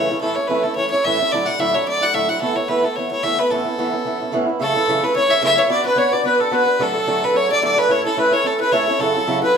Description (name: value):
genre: celtic folk, Celtic reel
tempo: 219 BPM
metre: 4/4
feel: swing 54% on 8ths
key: A major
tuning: A4 = 440 Hz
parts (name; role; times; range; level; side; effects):
- clear fiddle; melody; 0.0-9.6 s; A4 to F#5; -18 LUFS; equal; none
- fingerpicked swing-style acoustic guitar; accompaniment; 0.0-9.6 s; D2 to B4; -21 LUFS; right 1 dB; none
- accordion; second line; 4.6-9.6 s; A4 to E5; -22 LUFS; left 3 dB; light tremolo tuning
room: wet studio reverb, RT60 0.7 s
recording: band playing live in one room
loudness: -16 LUFS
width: side -6 dB against mid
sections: 0.0-4.6 A section; 4.6-9.6 B section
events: none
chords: 0.2 A; 1.3 Dadd9; 2.4 Esus4; 3.5 Aadd9; 4.6 F#m7; 5.7 Bm; 6.8 D; 7.9 A; 9.0 F#m7